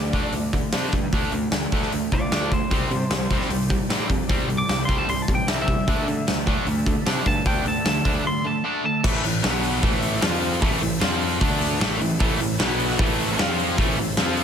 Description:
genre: hard rock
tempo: 152 BPM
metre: 4/4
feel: straight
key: unclear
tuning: A4 = 438 Hz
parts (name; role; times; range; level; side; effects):
- lightly driven lead guitar; melody; 0.0-9.0 s; F4 to D6; -27 LUFS; left 1 dB; slapback echo
- distorted electric guitar; riff; 0.0-14.4 s; A2 to F4; -28 LUFS; left 12 dB; overdrive
- overdriven electric guitar; riff; 0.0-14.4 s; A2 to F4; -27 LUFS; right 10 dB; none
- fuzz picked electric bass; bass; 0.0-14.4 s; A1 to D3; -28 LUFS; equal; overdrive
- huge arena drum kit; drums; 0.1-14.4 s; crash cymbal, hi-hat, kick drum, snare drum; -24 LUFS; equal; none
- overdriven tonewheel organ; sustained chords; 2.7-14.4 s; C4 to C6; -37 LUFS; equal; none
- distorted electric guitar; riff; 12.2-14.4 s; A2 to F4; -29 LUFS; right 1 dB; distortion
room: light reverb, small room reverb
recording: none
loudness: -20 LUFS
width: side -8 dB against mid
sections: 0.0-9.0 A section; 9.0-14.4 B section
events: lead electric guitar solo 0.0-9.0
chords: 0.0 D5; 2.7 C5; 5.9 D5; 9.0 Am; 9.4 B5; 9.8 Am; 10.2 F5; 10.6 Am; 11.0 F5; 11.4 D5; 11.8 Am; 12.6 B5; 13.0 Am; 13.4 F5; 13.8 Am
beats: 0.33 0.73 | 1.12 1.52 1.92 2.31 | 2.71 3.10 3.50 3.90 | 4.29 4.69 5.08 5.48 | 5.88 6.27 6.67 7.06 | 7.46 7.86 8.25 8.65 | 9.04 9.44 9.83 10.23 | 10.62 11.02 11.41 11.80 | 12.20 12.59 12.99 13.38 | 13.78 14.17

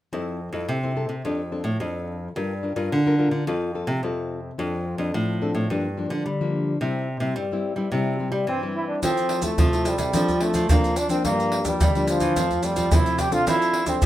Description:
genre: samba and choro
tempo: 108 BPM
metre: 4/4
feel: straight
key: F major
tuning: A4 = 439 Hz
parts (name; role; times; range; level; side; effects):
- nylon-string guitar; accompaniment; 0.1-14.1 s; F2 to Bb4; -27 LUFS; left 2 dB; none
- nylon-string guitar; bass; 0.1-14.1 s; F2 to G3; -26 LUFS; equal; none
- bright trombone; melody; 8.5-14.0 s; F3 to G4; -24 LUFS; right 1 dB; none
- maracas, surdo and pandeiro; percussion; 9.0-14.1 s; none; -23 LUFS; right 1 dB; none
room: moderate studio reverb, RT60 0.6 s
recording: minimal, uncompressed stereo recording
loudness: -21 LUFS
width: side -13 dB against mid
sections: 0.1-9.0 A section; 9.0-14.1 B section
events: none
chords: 0.1 Fmaj7; 1.2 Dm7/F; 2.4 Gm7; 3.5 F; 4.6 Dm7/F; 5.7 Gm7; 6.8 C; 9.0 Fmaj7; 10.1 Dm7/F; 11.3 Gm7; 12.4 Dm7/F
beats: | 0.13 0.69 1.24 1.80 | 2.36 2.92 3.47 4.03 | 4.58 5.14 5.70 6.25 | 6.81 7.37 7.92 8.48 | 9.03 9.59 10.14 10.70 | 11.25 11.81 12.36 12.91 | 13.47 14.02

